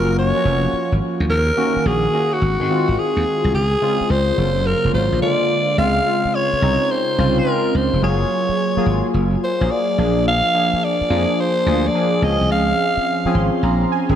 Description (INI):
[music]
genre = R&B, new jack swing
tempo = 107 BPM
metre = 4/4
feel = swing 67% on 16ths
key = unclear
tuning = A4 = 440 Hz
[part]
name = growling alto saxophone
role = melody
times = 0.0-13.6 s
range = Gb4 to F5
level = -20 LUFS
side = equal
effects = none
[part]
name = warm analog keys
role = accompaniment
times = 0.0-14.2 s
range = Db3 to C6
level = -20 LUFS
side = equal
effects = chorus
[part]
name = slap bass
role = bass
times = 0.0-14.2 s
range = F1 to Ab2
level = -19 LUFS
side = equal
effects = none
[sound]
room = moderate lush hall reverb, RT60 2.4 s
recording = dark, warm production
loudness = -16 LUFS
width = side -9 dB against mid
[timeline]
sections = 0.0-5.8 A section; 5.8-14.2 B section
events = synth keys fill 13.1-14.2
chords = 0.0 Gbmaj7; 1.3 Ebm7; 2.4 Ab7; 3.5 Dbmaj7; 4.4 Gbmaj7; 5.2 Bb7; 5.8 Dbmaj7; 8.0 Gbmaj9; 10.0 Bb7; 12.2 Dbmaj7